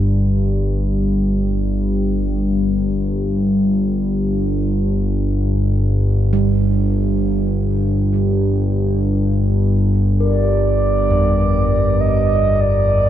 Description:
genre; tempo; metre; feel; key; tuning
dark ambient drone; free time; none; none; G minor; A4 = 440 Hz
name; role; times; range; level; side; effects
analog drone; drone; 0.0-13.1 s; G1 to G2; -16 LUFS; equal; chorus
gamelan-type bossed gongs; arpeggios; 6.3-13.1 s; F2 to G3; -23 LUFS; right 4 dB; tape echo
mellow horn-like synth lead; melody; 10.2-13.1 s; D5 to Eb5; -18 LUFS; right 2 dB; chorus, shimmer reverb
bronze singing bowl; texture; 10.2-13.1 s; Bb4; -27 LUFS; left 5 dB; shimmer reverb
room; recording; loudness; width
wet huge ambient reverb, RT60 7.2 s; dark, warm production; -15 LUFS; side -11 dB against mid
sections
0.0-13.1 A section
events
none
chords
0.0 Gm7

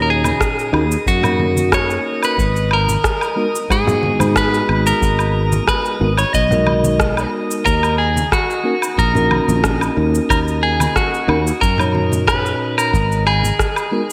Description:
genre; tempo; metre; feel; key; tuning
sunset chillout; 91 BPM; 4/4; straight; G# minor; A4 = 437 Hz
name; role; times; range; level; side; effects
clean electric guitar; melody; 0.0-14.1 s; F#4 to D#5; -21 LUFS; equal; vintage 12-bit sampler grit, digital delay
mellow tine electric piano; accompaniment; 0.0-14.0 s; A#2 to C#5; -24 LUFS; equal; none
sustaining fretless electric bass; bass; 0.0-13.5 s; G#1 to G#2; -21 LUFS; equal; analog chorus
drifting glass-harmonics texture; texture; 0.0-14.1 s; D#5 to D#6; -34 LUFS; equal; chorus, built-in reverb
electronic woodblock, shaker and rim click; drums; 0.2-14.1 s; none; -25 LUFS; equal; gated reverb
congas; percussion; 0.2-13.6 s; none; -26 LUFS; equal; none
electronic kick drum; drums; 0.4-13.7 s; none; -23 LUFS; equal; none
room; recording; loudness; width
wet lush hall reverb, RT60 3.0 s; bright 1980s-style digital production; -16 LUFS; mono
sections
0.0-14.1 A section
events
none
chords
0.0 D#m7; 2.4 G#m7; 7.7 D#m7; 12.9 G#5

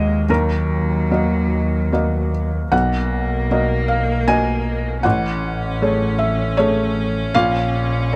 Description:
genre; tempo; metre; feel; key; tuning
neoclassical piano and strings; 73-79 BPM; 3/4; rubato; unclear; A4 = 441 Hz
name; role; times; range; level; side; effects
rich cello; second line; 0.0-8.2 s; F#3 to C#4; -27 LUFS; equal; none
felt-muted upright piano; accompaniment; 0.0-8.2 s; A1 to G#5; -22 LUFS; equal; none
warm double bass; bass; 0.0-8.2 s; A1 to D#2; -24 LUFS; equal; none
room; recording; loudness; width
little or no reverb; close, detailed microphones; -19 LUFS; mono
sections
0.0-8.2 A section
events
none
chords
0.0 D#m; 2.7 Bmaj7; 5.0 Amaj7; 7.3 A#m

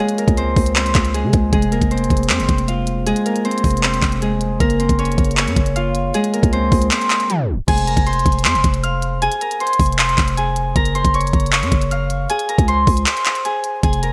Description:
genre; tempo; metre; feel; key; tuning
hip hop, trap; 156 BPM; 4/4; half-time; F phrygian; A4 = 441 Hz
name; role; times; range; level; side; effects
Celtic harp; melody; 0.0-14.1 s; Ab3 to F6; -21 LUFS; equal; low-pass filter, digital delay
trap drum kit; drums; 0.1-14.1 s; crash cymbal, handclaps, hi-hat, kick drum; -20 LUFS; equal; gated reverb
growling 808-style bass; bass; 0.3-14.1 s; F1 to Db3; -22 LUFS; equal; none
room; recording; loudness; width
light reverb; bright 1980s-style digital production, tape stop; -17 LUFS; mono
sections
0.0-7.7 A section; 7.7-14.1 B section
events
kick muted 6.9-7.7; tape stop 7.3-7.7; break 13.1-13.8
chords
0.0 Db5; 1.5 Fm; 4.6 Gbmaj7; 6.1 Db5; 7.7 Fm; 10.8 Gbmaj7; 12.3 Db5

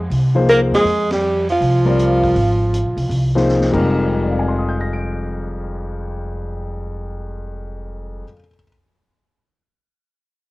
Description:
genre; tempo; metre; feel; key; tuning
modal jazz; 160 BPM; 4/4; swing 66% on 8ths; F dorian; A4 = 440 Hz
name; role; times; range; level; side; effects
breathy alto saxophone; melody; 0.0-3.5 s; F4 to Bb4; -17 LUFS; equal; cassette tape
clear tenor saxophone; second line; 0.0-3.5 s; F3 to Bb3; -23 LUFS; right 3 dB; cassette tape
upright bass; bass; 0.0-8.2 s; F1 to F2; -20 LUFS; equal; none
vintage drum kit; drums; 0.1-3.8 s; crash cymbal, hi-hat, kick drum, ride cymbal, snare drum; -31 LUFS; equal; cassette tape
dark concert grand piano; accompaniment; 0.3-8.7 s; F2 to D7; -21 LUFS; left 2 dB; cassette tape
room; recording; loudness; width
small room reverb; home recording on cassette; -15 LUFS; side -20 dB against mid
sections
0.0-3.9 A section; 3.9-6.9 B section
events
band accent 1.0; drum fill 3.5-3.9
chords
0.0 Fm11

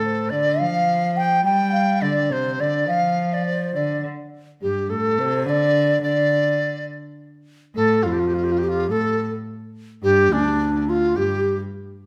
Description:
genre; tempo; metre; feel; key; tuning
chinese traditional, Chinese chamber ensemble; 105 BPM; 2/4; straight; D yu mode; A4 = 441 Hz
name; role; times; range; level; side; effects
mellow hollow xiao; melody; 0.0-11.6 s; D4 to G5; -24 LUFS; equal; none
bright large dizi; second line; 0.0-11.6 s; D4 to G5; -26 LUFS; equal; none
warm cello; second line; 0.0-11.6 s; D2 to G3; -27 LUFS; equal; none
room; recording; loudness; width
moderate recital hall reverb, RT60 1.3 s; none; -21 LUFS; mono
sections
0.0-7.2 A section; 7.2-12.1 B section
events
none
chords
none

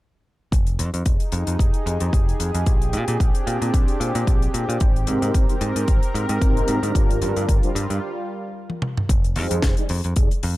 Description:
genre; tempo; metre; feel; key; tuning
nu-disco, nu disco; 112 BPM; 4/4; swing 55% on 16ths; F dorian; A4 = 440 Hz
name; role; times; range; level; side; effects
lush unison pad; sustained chords; 1.2-9.1 s; G3 to Bb4; -28 LUFS; equal; chorus, sidechain pumping
picked electric bass; bass; 0.5-10.5 s; F1 to Bb2; -24 LUFS; equal; sidechain pumping
electronic kick drum; drums; 0.5-10.3 s; none; -19 LUFS; equal; none
tight funk drum kit; drums; 0.5-10.6 s; hi-hat, snare drum, toms; -30 LUFS; left 2 dB; none
mellow synth brass; accompaniment; 5.1-10.3 s; C4 to D5; -26 LUFS; equal; chorus, digital delay
room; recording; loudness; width
small room ambience; dark, warm production; -18 LUFS; side -17 dB against mid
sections
0.5-9.1 A section; 9.1-10.6 B section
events
break 8.0-9.1; drum fill 8.7-9.1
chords
0.5 Fm9; 2.7 Bb13; 4.8 Abmaj9; 7.0 Gm7; 9.1 Fm9

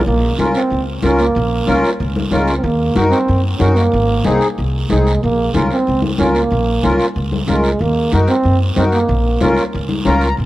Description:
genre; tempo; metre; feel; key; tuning
latin, cumbia; 186 BPM; 4/4; straight; Bb minor; A4 = 441 Hz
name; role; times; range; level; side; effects
breathy trombone; second line; 0.0-9.5 s; Ab3 to Db4; -18 LUFS; right 2 dB; none
upright bass; bass; 0.0-10.5 s; Ab1 to Gb2; -17 LUFS; equal; none
guiro; percussion; 0.1-10.5 s; none; -30 LUFS; right 4 dB; none
accordion; accompaniment; 0.4-10.4 s; C4 to Bb5; -19 LUFS; left 1 dB; light tremolo tuning
congas; percussion; 0.4-10.2 s; none; -22 LUFS; left 3 dB; none
room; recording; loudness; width
moderate plate reverb, RT60 3.4 s; worn, warbling old tape, cassette tape, warbly pitch drift; -13 LUFS; side -16 dB against mid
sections
0.1-10.4 A section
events
trombone solo 0.1-10.4; accordion fill 9.9-10.4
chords
0.1 Bbm; 2.6 Ebm; 3.9 Ab; 5.2 Bbm; 7.8 Ebm; 9.1 Bbm

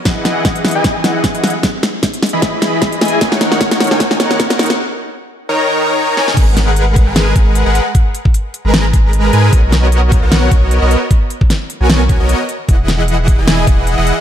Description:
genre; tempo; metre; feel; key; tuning
future bass; 152 BPM; 4/4; swing 55% on 16ths, half-time; G# minor; A4 = 440 Hz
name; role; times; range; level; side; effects
big bright polysynth; riff; 0.1-14.1 s; D#3 to B5; -16 LUFS; equal; chorus, sidechain pumping, tape echo
saturated sub bass; bass; 0.1-14.1 s; D#1 to G#2; -14 LUFS; equal; sidechain pumping, high-pass filter
electronic kick drum; drums; 0.1-13.8 s; none; -12 LUFS; equal; none
pop drum kit; drums; 0.1-14.2 s; crash cymbal, hi-hat, snare drum; -16 LUFS; equal; none
room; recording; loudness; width
moderate lush hall reverb, RT60 1.6 s; dark, warm production, high-pass filter; -10 LUFS; side -10 dB against mid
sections
0.0-6.4 A section; 6.4-14.2 B section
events
build-up 0.0-6.4; drum fill 0.0-4.8, 6.2; break 4.8-6.4; drop 6.4-14.2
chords
0.1 Emaj9; 3.2 D#m7; 6.4 G#m7; 9.5 Bmaj7; 12.7 Emaj9

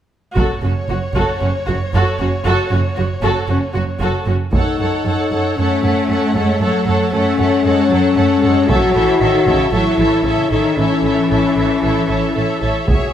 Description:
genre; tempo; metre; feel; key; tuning
cinematic, epic orchestral film score; 115 BPM; 4/4; straight; F# dorian; A4 = 440 Hz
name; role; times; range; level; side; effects
rich chamber violin section; melody; 0.4-13.1 s; C#5 to F#5; -26 LUFS; left 1 dB; none
dark symphonic violin section; second line; 0.4-13.1 s; C#4 to C#5; -24 LUFS; left 1 dB; none
rich symphonic viola section; accompaniment; 0.4-13.1 s; F#4 to A4; -22 LUFS; right 1 dB; none
clear symphonic double bass section; bass; 0.4-13.0 s; F#1 to F#2; -21 LUFS; right 3 dB; none
rich symphonic cello section; bass; 0.4-12.6 s; F#2 to A3; -20 LUFS; right 2 dB; none
solo taiko drums; drums; 0.4-1.4, 4.5-5.5, 8.7-9.7, 12.9-13.1 s; none; -20 LUFS; right 1 dB; none
dark French horn section; sustained chords; 4.5-13.1 s; G#3 to F#4; -17 LUFS; left 5 dB; none
room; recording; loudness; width
moderate recital hall reverb, RT60 1.5 s; none; -14 LUFS; side -10 dB against mid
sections
0.4-4.5 A section; 4.5-13.1 B section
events
none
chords
0.4 F#m; 8.7 A

